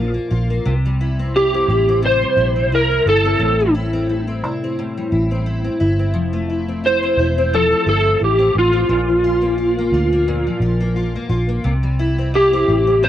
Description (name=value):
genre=indie pop, bedroom pop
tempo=87 BPM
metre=4/4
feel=swing 55% on 16ths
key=F major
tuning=A4 = 440 Hz
part: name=fingerpicked steel-string acoustic guitar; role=accompaniment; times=0.0-13.1 s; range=A2 to F4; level=-22 LUFS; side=left 2 dB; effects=analog chorus, vibrato effect, cassette tape
part: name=vintage muted fingered electric bass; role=bass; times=0.0-13.1 s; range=E1 to D2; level=-20 LUFS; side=equal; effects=none
part: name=electric slide guitar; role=melody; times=1.4-13.1 s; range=F4 to C5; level=-16 LUFS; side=equal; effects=ensemble chorus, analog delay
room=light reverb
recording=home recording on cassette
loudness=-15 LUFS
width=side -11 dB against mid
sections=0.0-13.1 A section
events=none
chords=0.0 Bb5; 0.6 C; 3.4 Am7; 6.2 Fmaj7; 8.9 Bb; 11.6 C